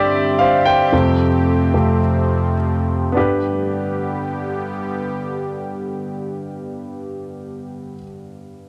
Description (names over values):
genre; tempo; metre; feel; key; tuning
pop; free time; none; none; G mixolydian; A4 = 440 Hz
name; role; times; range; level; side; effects
clear concert grand piano; accompaniment; 0.0-8.7 s; F2 to G5; -20 LUFS; equal; cassette tape
sweeping resonant pad; sustained chords; 0.0-8.0 s; D3 to G4; -28 LUFS; equal; chorus, cassette tape
room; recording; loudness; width
light reverb; home recording on cassette; -19 LUFS; mono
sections
0.0-3.2 A section; 3.2-7.9 B section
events
slowing down 0.0-3.2; grand piano solo 0.0-3.2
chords
0.0 Gsus4; 0.9 Fadd9; 3.2 G